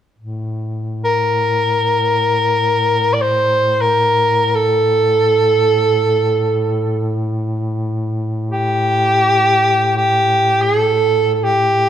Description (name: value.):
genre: caucasian folk, Caucasian lament.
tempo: free time.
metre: none.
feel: none.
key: A phrygian.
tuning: A4 = 440 Hz.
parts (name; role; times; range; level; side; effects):
dark duduk; drone; 0.2-11.9 s; A2; -21 LUFS; left 1 dB; none.
clear soprano saxophone; melody; 1.0-11.9 s; G4 to D5; -13 LUFS; right 1 dB; none.
room: moderate concert hall reverb, RT60 2.0 s.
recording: dark, warm production.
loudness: -13 LUFS.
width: side -10 dB against mid.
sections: 0.2-11.9 A section.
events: none.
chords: none.